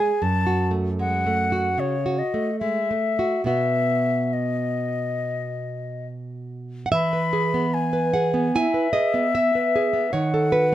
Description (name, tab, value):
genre	romantic duo for flute and classical guitar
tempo	68-78 BPM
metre	4/4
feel	rubato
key	E major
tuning	A4 = 440 Hz
part	concert flute	melody	0.0-10.7 s	C#5 to B5	-24 LUFS	left 4 dB	plate reverb
part	nylon-string guitar	accompaniment	0.0-10.7 s	F#2 to G#5	-22 LUFS	right 2 dB	none
room	moderate studio ambience, RT60 0.5 s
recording	none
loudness	-20 LUFS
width	side -13 dB against mid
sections	0.0-6.9 A section; 6.9-10.7 B section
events	none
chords	0.2 F#m; 3.5 B; 6.9 E; 10.1 B7/D#